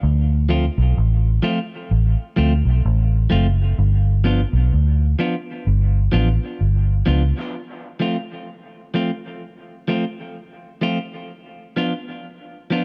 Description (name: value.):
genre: dub reggae.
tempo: 64 BPM.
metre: 4/4.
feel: swing 58% on 16ths.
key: unclear.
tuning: A4 = 441 Hz.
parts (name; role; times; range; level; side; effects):
vintage muted fingered electric bass; bass; 0.0-7.3 s; F#1 to D2; -18 LUFS; equal; none.
clean electric guitar; accompaniment; 0.5-12.8 s; F3 to F4; -26 LUFS; equal; dub echo.
room: little or no reverb.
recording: echo-heavy mix.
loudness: -20 LUFS.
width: mono.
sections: 0.0-7.5 A section; 7.5-12.8 B section.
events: none.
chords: 0.0 Dm7; 3.8 G7; 7.5 F; 11.3 Bdim/F.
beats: | 0.02 0.96 1.90 2.83 | 3.77 4.71 5.65 6.59 | 7.53 8.47 9.41 10.35 | 11.29 12.23.